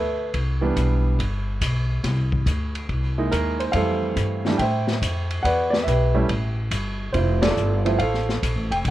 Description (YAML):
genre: jazz piano trio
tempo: 141 BPM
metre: 4/4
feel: swing 67% on 8ths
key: C major, F major from 3.7 s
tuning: A4 = 439 Hz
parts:
  - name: warm concert grand piano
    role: melody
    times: 0.0-8.9 s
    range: E3 to G5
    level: -23 LUFS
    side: right 2 dB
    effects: none
  - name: upright bass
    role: bass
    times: 0.0-8.9 s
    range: F1 to A2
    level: -23 LUFS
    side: equal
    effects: none
  - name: open jazz drum kit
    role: drums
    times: 0.3-8.9 s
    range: hi-hat, kick drum, ride cymbal, snare drum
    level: -28 LUFS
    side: left 2 dB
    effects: none
room: light reverb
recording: worn, warbling old tape, cassette tape, warbly pitch drift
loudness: -20 LUFS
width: side -14 dB against mid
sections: 0.0-3.7 A section; 3.7-8.9 B section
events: band accent 7.4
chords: 0.3 Cmaj7; 2.9 C7alt; 3.7 Fmaj7; 5.4 Em7; 6.3 Gsus2; 7.1 Dm9